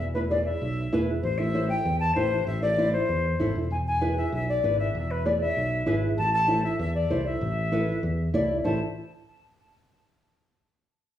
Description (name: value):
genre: latin, cumbia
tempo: 194 BPM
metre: 4/4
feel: straight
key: A harmonic minor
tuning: A4 = 440 Hz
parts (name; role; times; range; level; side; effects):
- silver concert flute; melody; 0.0-8.8 s; B4 to A5; -27 LUFS; left 2 dB; tape echo
- fingered electric bass; bass; 0.0-8.8 s; E1 to E2; -28 LUFS; equal; none
- nylon-string guitar; accompaniment; 0.1-8.8 s; E4 to D5; -28 LUFS; right 1 dB; none
room: wet large studio reverb, RT60 0.9 s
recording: heard from further back in the room, small room ambience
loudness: -23 LUFS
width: side -11 dB against mid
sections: 0.0-3.7 A section; 3.7-8.7 B section; 8.7-9.9 C section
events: none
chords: 0.0 E; 1.2 Am; 3.7 E; 6.2 Am